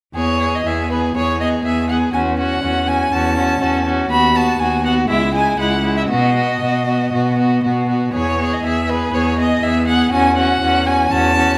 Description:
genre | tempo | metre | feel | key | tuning
quick classical-period movement for string quartet | 121 BPM | 4/4 | straight | E major | A4 = 440 Hz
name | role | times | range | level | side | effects
rich violin | second line | 0.1-11.6 s | E4 to G#4 | -24 LUFS | equal | none
rich violin | melody | 0.2-11.6 s | B4 to B5 | -22 LUFS | equal | none
rich viola | accompaniment | 0.2-11.6 s | G#3 to C#4 | -22 LUFS | equal | none
clear cello | bass | 0.2-11.5 s | C#2 to B2 | -24 LUFS | equal | none
room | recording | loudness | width
wet recital hall reverb, RT60 1.3 s | none | -17 LUFS | mono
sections
0.2-11.6 A section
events
none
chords
0.2 E; 2.1 F#m7/E; 4.1 B/D#; 5.1 C#m; 6.1 B; 8.1 E; 10.1 F#m7/E

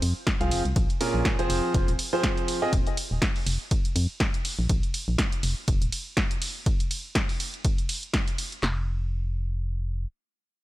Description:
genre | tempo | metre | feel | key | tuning
piano house | 122 BPM | 4/4 | swing 56% on 16ths | F minor | A4 = 441 Hz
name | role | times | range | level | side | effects
organ-like FM bass | bass | 0.0-10.1 s | Eb1 to F2 | -27 LUFS | equal | sidechain pumping
punchy analog drum machine | drums | 0.0-8.6 s | hi-hat, ride cymbal, snare drum | -30 LUFS | equal | none
punchy analog drum machine | drums | 0.3-8.8 s | handclaps, kick drum, snare drum | -26 LUFS | equal | none
clear concert grand piano | riff | 0.4-2.7 s | Bb2 to F5 | -27 LUFS | right 1 dB | sidechain pumping, ping-pong delay
room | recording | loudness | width
digital ambience | none | -24 LUFS | side -16 dB against mid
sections
0.0-8.6 A section; 8.6-10.6 B section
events
drop 0.0-8.6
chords
0.0 Fm; 0.8 Bbm7; 1.5 Fm; 2.7 N.C.; 3.5 Fsus4; 4.7 N.C.; 5.4 Ebsus2; 6.7 N.C.

